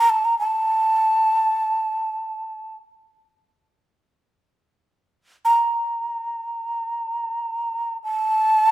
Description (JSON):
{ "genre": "japanese traditional, Japanese chamber music", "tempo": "free time", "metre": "none", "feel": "none", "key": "unclear", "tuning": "A4 = 438 Hz", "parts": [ { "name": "breathy hollow shakuhachi", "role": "solo", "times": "0.0-8.7 s", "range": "A5 to Bb5", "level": "-19 LUFS", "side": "right 1 dB", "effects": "none" } ], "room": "light reverb", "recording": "none", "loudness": "-20 LUFS", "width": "side -15 dB against mid", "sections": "0.0-8.7 A section", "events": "none", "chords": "none" }